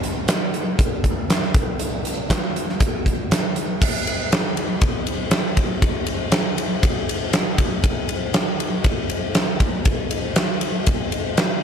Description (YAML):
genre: rock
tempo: 119 BPM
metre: 4/4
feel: straight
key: none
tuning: none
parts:
  - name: huge arena drum kit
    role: drums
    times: 0.0-11.5 s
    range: crash cymbal, hi-hat, kick drum, ride cymbal, snare drum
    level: -19 LUFS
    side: equal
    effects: none
room: light reverb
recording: none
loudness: -19 LUFS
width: side -7 dB against mid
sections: 0.0-3.8 A section; 3.8-11.6 B section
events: none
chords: none